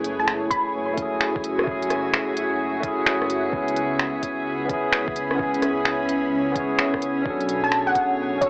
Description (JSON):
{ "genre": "future garage", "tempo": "129 BPM", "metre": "4/4", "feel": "swing 65% on 16ths", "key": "F# minor", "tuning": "A4 = 440 Hz", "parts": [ { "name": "barky tine electric piano", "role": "accompaniment", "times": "0.0-8.5 s", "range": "A3 to C#5", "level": "-25 LUFS", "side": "equal", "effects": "sidechain pumping, tape echo" }, { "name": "granular cloud pad", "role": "sustained chords", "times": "0.0-8.5 s", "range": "A3 to B5", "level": "-27 LUFS", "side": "equal", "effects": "built-in reverb, sidechain pumping" }, { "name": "dark detuned saw bass", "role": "bass", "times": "0.0-8.5 s", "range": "F#1 to C#2", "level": "-39 LUFS", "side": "equal", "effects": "sidechain pumping" }, { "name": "organic electronic drum kit", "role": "drums", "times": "0.0-8.5 s", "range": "finger snaps, hi-hat, rim click", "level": "-23 LUFS", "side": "equal", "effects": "overdrive, vintage 12-bit sampler grit" }, { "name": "drifting glass-harmonics texture", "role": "texture", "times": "0.5-8.5 s", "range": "G#4 to G#5", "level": "-30 LUFS", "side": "equal", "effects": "chorus, built-in reverb" }, { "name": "glassy wavetable pluck", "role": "melody", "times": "0.2-1.0, 7.6-8.5 s", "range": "C#5 to B5", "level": "-22 LUFS", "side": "equal", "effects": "chorus, cassette tape, tape echo" }, { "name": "electronic kick drum", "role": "drums", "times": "0.5-8.5 s", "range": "none", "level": "-35 LUFS", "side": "equal", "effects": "vintage 12-bit sampler grit" } ], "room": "moderate studio reverb, RT60 0.6 s", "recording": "home recording on cassette, AM radio sound", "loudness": "-20 LUFS", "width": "side -33 dB against mid", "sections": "0.0-8.5 A section", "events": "none", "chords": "0.0 F#m7; 3.5 C#m7; 7.3 Bm7", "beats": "0.28 0.74 1.21 | 1.67 2.14 2.60 3.07 | 3.53 4.00 4.46 4.93 | 5.39 5.86 6.32 6.79 | 7.25 7.72 8.19" }